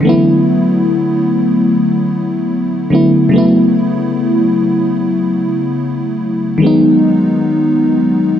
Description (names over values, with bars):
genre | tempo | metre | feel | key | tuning
R&B | 73 BPM | 4/4 | straight | unclear | A4 = 442 Hz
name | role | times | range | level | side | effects
FM electric piano with soft pad layer | solo | 0.0-8.4 s | C#3 to E4 | -10 LUFS | left 1 dB | chorus
room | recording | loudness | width
moderate lush hall reverb, RT60 2.6 s | none | -11 LUFS | side -9 dB against mid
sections
0.0-8.4 A section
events
none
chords
0.0 D6; 3.3 A6; 6.6 G#m7